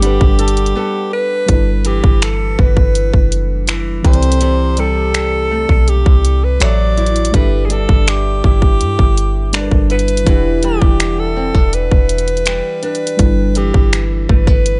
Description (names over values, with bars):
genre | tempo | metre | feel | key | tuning
contemporary R&B | 82 BPM | 4/4 | straight | G major | A4 = 443 Hz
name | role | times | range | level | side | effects
breathy alto saxophone | melody | 0.0-14.8 s | G4 to D5 | -21 LUFS | equal | digital delay
mellow FM electric piano | accompaniment | 0.0-14.8 s | E3 to F#5 | -26 LUFS | equal | chorus, phaser
flamenco guitar | arpeggios | 0.0-14.8 s | C3 to B4 | -26 LUFS | equal | none
soft 808-style bass | bass | 0.0-14.8 s | E1 to G2 | -18 LUFS | equal | none
trap drum kit | drums | 0.0-14.8 s | finger snaps, hi-hat, kick drum | -16 LUFS | equal | none
room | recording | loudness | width
little or no reverb | nothing above 10.5 kHz | -14 LUFS | mono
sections
0.0-1.5 A section; 1.5-14.8 B section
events
break 0.8-1.5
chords
0.0 Gmaj9; 1.5 G6; 4.0 C6; 6.6 F#m7b5; 7.3 G6; 10.3 Em9; 13.2 G6